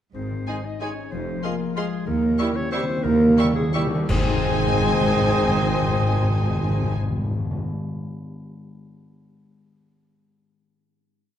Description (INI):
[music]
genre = classical, orchestral ballroom waltz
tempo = 164-202 BPM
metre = 3/4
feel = rubato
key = Ab major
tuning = A4 = 440 Hz
[part]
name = bright clarinet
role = second line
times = 0.1-6.9 s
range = G4 to Eb5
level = -32 LUFS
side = right 1 dB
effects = none
[part]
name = dark French horn section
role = sustained chords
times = 0.1-6.9 s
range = G3 to Eb4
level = -30 LUFS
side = left 2 dB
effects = none
[part]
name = concert harp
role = arpeggios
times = 0.1-8.0 s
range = Ab2 to Eb5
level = -33 LUFS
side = left 9 dB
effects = none
[part]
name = mellow tuba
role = bass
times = 0.2-6.9 s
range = F1 to Eb2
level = -28 LUFS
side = right 3 dB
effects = none
[part]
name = rich studio cello section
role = bass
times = 0.2-6.9 s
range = Eb2 to Ab2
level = -27 LUFS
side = right 2 dB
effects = none
[part]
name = rich studio double bass section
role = bass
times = 0.2-6.9 s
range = F1 to Eb2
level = -31 LUFS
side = right 3 dB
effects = none
[part]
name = warm studio violin section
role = melody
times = 0.5-6.9 s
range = Ab5 to Db6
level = -32 LUFS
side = left 4 dB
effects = none
[part]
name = bright flute section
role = second line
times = 0.5-6.9 s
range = Ab5 to Db6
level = -35 LUFS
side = left 4 dB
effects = none
[part]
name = mellow cor anglais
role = second line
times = 0.5-6.9 s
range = Eb5 to F5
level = -34 LUFS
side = right 6 dB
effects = none
[part]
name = rich studio violin section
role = second line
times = 0.5-6.9 s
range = G4 to C5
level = -31 LUFS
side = left 3 dB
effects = none
[part]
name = clear bassoon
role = accompaniment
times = 0.5-6.9 s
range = G3 to C4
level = -32 LUFS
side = right 1 dB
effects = none
[part]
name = rich studio viola section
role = accompaniment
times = 0.5-6.9 s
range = Eb4 to F4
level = -34 LUFS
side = equal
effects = none
[part]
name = cymbal swell, clash cymbals and concert bass drum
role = percussion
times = 2.1-4.8 s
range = none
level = -29 LUFS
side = equal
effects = none
[part]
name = timpani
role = percussion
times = 2.1-7.6 s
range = Ab2 to Eb3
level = -25 LUFS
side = left 1 dB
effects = none
[sound]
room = wet recital hall reverb, RT60 1.4 s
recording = dark, warm production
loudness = -20 LUFS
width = side -10 dB against mid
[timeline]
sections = 0.2-4.1 A section; 4.1-6.2 final chord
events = slowing down 1.6-4.1; timpani fill 2.1-4.1; band accent 4.1-4.4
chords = 0.2 Ab; 1.1 Fm; 2.1 Eb7b9; 4.1 Ab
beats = | 0.15 0.48 0.81 | 1.12 1.44 1.77 | 2.07 2.39 2.73 | 3.05 3.38 3.75 | 4.09 4.44 4.80 | 5.14 5.48 5.84